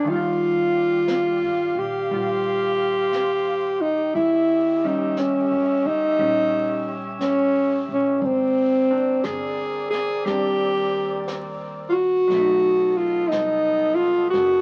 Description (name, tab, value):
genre	jazz ballad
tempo	59 BPM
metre	4/4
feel	swing 67% on 8ths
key	unclear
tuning	A4 = 439 Hz
part	warm alto saxophone	melody	0.0-14.6 s	C4 to Ab4	-22 LUFS	equal	none
part	vintage hollow-body jazz guitar	accompaniment	0.0-14.6 s	Eb3 to F4	-33 LUFS	equal	none
part	mellow saxophone section	sustained chords	0.0-14.6 s	B3 to F5	-35 LUFS	equal	none
part	upright bass	bass	0.1-14.6 s	F#1 to Bb2	-42 LUFS	equal	none
part	jazz brush drum kit	drums	0.1-14.6 s	brushed snare drum, hi-hat, snare drum	-42 LUFS	equal	none
room	moderate large studio reverb, RT60 0.9 s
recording	very old 78 rpm record, vinyl crackle, nothing above 10.9 kHz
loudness	-21 LUFS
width	mono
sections	0.0-14.6 A section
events	none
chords	0.0 Ebmaj9; 4.1 Eb7b9; 8.2 Abmaj9#11; 12.3 B7